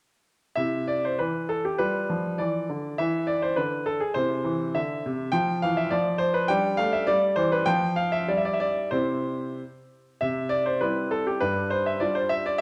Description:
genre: classical-period piano sonatina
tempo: 91-105 BPM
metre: 2/4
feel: rubato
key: C major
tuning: A4 = 440 Hz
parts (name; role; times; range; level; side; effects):
- bright concert grand piano; solo; 0.6-12.6 s; G2 to G5; -26 LUFS; equal; none
room: moderate recital hall reverb, RT60 1.3 s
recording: none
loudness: -26 LUFS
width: mono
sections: 0.6-10.2 A section; 10.2-12.6 A section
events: none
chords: 0.6 C; 1.8 G7; 3.0 E7b13; 4.2 Cadd9; 5.3 Fsus2; 5.9 N.C.; 6.5 G5; 7.1 Em/G; 7.7 N.C.; 8.9 C; 11.4 G5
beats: | 0.56 1.18 | 1.78 2.38 | 2.98 3.56 | 4.15 4.74 | 5.33 5.90 | 6.48 7.07 | 7.66 8.28 | 8.93 9.58 | 10.22 10.82 | 11.42 12.01 | 12.61

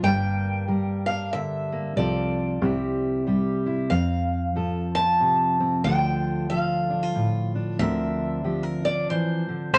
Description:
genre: acoustic folk duo or small band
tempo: 93 BPM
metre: 3/4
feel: swing 61% on 8ths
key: F major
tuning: A4 = 440 Hz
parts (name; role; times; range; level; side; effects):
- picked old ladder-braced acoustic guitar; melody; 0.0-9.8 s; C5 to A5; -29 LUFS; equal; none
- fingerpicked steel-string acoustic guitar; accompaniment; 0.0-9.8 s; F2 to Bb4; -28 LUFS; equal; none
- fingered electric bass; bass; 0.0-9.8 s; G1 to F2; -31 LUFS; equal; none
- mandolin; second line; 9.7-9.8 s; C5; -16 LUFS; equal; none
room: moderate club reverb, RT60 0.6 s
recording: none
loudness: -25 LUFS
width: mono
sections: 0.0-9.8 A section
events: none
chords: 0.0 Gm; 2.0 F/C; 2.6 C; 3.9 F; 5.9 Dm; 7.8 Bbadd9/D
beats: | 0.04 0.68 1.33 | 1.97 2.62 3.27 | 3.91 4.56 5.21 | 5.85 6.50 7.15 | 7.79 8.44 9.09 | 9.74

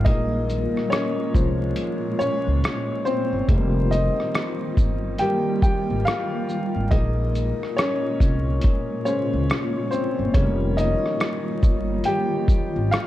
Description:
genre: lo-fi hip hop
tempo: 70 BPM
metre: 4/4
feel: swing 62% on 16ths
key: F minor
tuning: A4 = 440 Hz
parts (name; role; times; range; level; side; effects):
- clear upright piano; accompaniment; 0.0-13.1 s; Bb2 to G5; -24 LUFS; left 1 dB; cassette tape
- granular cloud pad; sustained chords; 0.0-13.1 s; Bb2 to F4; -29 LUFS; equal; built-in reverb
- upright bass; bass; 0.0-12.9 s; F1 to Db2; -24 LUFS; equal; none
- lo-fi sampler-style drum kit; drums; 0.1-13.1 s; hi-hat, kick drum, rim click, shaker; -22 LUFS; equal; vintage 12-bit sampler grit
room: light reverb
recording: dark, warm production, vinyl crackle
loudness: -20 LUFS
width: side -14 dB against mid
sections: 0.0-13.1 A section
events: upright piano solo 0.0-13.1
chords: 0.1 Bbm7; 3.5 F9sus4; 6.9 Bbm7; 10.3 F9sus4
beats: | 0.06 0.91 1.77 2.63 | 3.49 4.34 5.20 6.06 | 6.91 7.77 8.63 9.49 | 10.34 11.20 12.06 12.91

